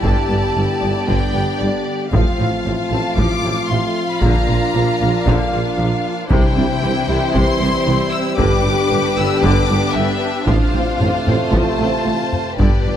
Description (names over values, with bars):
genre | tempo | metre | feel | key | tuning
cinematic, epic orchestral film score | 115 BPM | 4/4 | straight | unclear | A4 = 440 Hz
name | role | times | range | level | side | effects
warm symphonic violin section | melody | 0.0-13.0 s | D5 to E6 | -24 LUFS | left 4 dB | none
warm symphonic violin section | second line | 0.0-13.0 s | E4 to F5 | -23 LUFS | left 3 dB | none
rich symphonic viola section | accompaniment | 0.0-13.0 s | C3 to E4 | -25 LUFS | equal | none
warm French horn section | sustained chords | 0.0-13.0 s | B3 to G4 | -24 LUFS | left 4 dB | none
warm trombone section | sustained chords | 0.0-13.0 s | C3 to Bb3 | -26 LUFS | right 5 dB | none
mellow tuba | bass | 0.0-13.0 s | G1 to C2 | -25 LUFS | right 3 dB | none
rich symphonic double bass section | bass | 0.0-12.9 s | G1 to C2 | -24 LUFS | right 3 dB | none
warm symphonic cello section | bass | 0.0-12.9 s | G2 to C3 | -24 LUFS | right 2 dB | none
taiko ensemble | drums | 0.0-13.0 s | none | -20 LUFS | equal | none
timpani | percussion | 6.3-9.1, 12.6-13.0 s | G2 to C3 | -26 LUFS | left 2 dB | none
cymbal swell | sound effects | 12.6-13.0 s | none | barely audible | none | none
room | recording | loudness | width
light reverb | close, detailed microphones | -14 LUFS | side -10 dB against mid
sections
0.0-13.0 A section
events
timpani fill 12.6-13.0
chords
0.0 G; 2.1 F/A; 4.2 Bb; 6.3 C; 8.4 G; 10.5 F/A